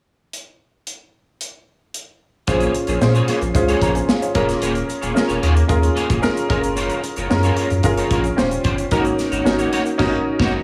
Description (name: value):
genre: polished 1980s jazz-funk pop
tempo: 112 BPM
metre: 4/4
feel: straight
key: Bb minor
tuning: A4 = 441 Hz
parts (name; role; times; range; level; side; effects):
- modern studio drum kit; drums; 0.3-10.6 s; crash cymbal, hi-hat, kick drum, snare drum; -26 LUFS; equal; none
- warm baby grand piano; accompaniment; 2.5-10.6 s; Db4 to Bb5; -22 LUFS; equal; analog chorus
- electric guitar at the edge of break-up; riff; 2.5-10.6 s; Bb3 to Db5; -27 LUFS; equal; ensemble chorus
- saturated sub bass; bass; 2.5-10.6 s; Eb1 to Bb2; -23 LUFS; equal; none
- tube shaker; percussion; 2.5-10.0 s; none; -42 LUFS; equal; none
room: light reverb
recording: small room ambience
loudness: -19 LUFS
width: mono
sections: 0.3-2.5 A section; 2.5-10.6 B section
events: grand piano fill 6.0-6.8; band accent 10.0-10.6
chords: 0.3 N.C.; 2.5 Bbm7; 4.4 Eb9sus4; 6.5 Gbmaj7; 8.4 Eb13; 8.9 Ab9sus4